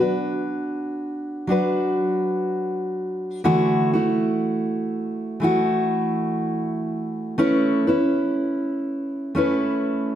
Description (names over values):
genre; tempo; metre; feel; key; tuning
pop; 61 BPM; 4/4; straight; B minor; A4 = 441 Hz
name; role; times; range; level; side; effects
fingerpicked steel-string acoustic guitar; solo; 0.0-10.2 s; D3 to B4; -20 LUFS; equal; none
room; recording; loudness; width
wet recital hall reverb, RT60 1.7 s; none; -20 LUFS; side -10 dB against mid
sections
0.0-10.2 A section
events
none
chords
0.0 Bm; 3.5 Dadd9; 7.4 Aadd9